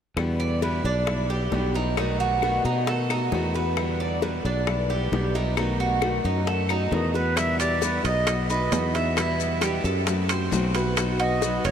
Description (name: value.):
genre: latin, Cuban son and guajira.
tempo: 133 BPM.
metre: 4/4.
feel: straight.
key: E minor.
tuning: A4 = 440 Hz.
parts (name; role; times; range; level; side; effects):
fingerpicked steel-string acoustic guitar; accompaniment; 0.2-11.7 s; B2 to F#4; -30 LUFS; left 3 dB; none.
sustaining fretless electric bass; bass; 0.2-11.7 s; F#1 to B2; -26 LUFS; equal; none.
bongos; percussion; 0.2-11.7 s; none; -33 LUFS; left 6 dB; none.
claves; percussion; 0.2-11.2 s; none; -38 LUFS; left 10 dB; none.
Cuban tres; arpeggios; 0.4-11.7 s; D4 to E5; -28 LUFS; right 3 dB; none.
breathy silver concert flute; melody; 6.9-11.7 s; B4 to E5; -29 LUFS; equal; ping-pong delay.
maracas; percussion; 7.4-11.7 s; none; -37 LUFS; left 12 dB; none.
timbales; percussion; 7.4-11.7 s; none; -32 LUFS; right 8 dB; none.
room: wet huge ambient reverb, RT60 6.6 s.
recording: dreamy mix soaked in reverb.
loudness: -22 LUFS.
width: side -8 dB against mid.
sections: 0.2-7.4 A section; 7.4-11.7 B section.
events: none.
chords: 0.2 Em7; 2.0 B7; 3.8 Em7; 5.6 B7; 7.4 Em7; 8.3 B; 9.2 Em; 10.1 F#dim; 11.0 B.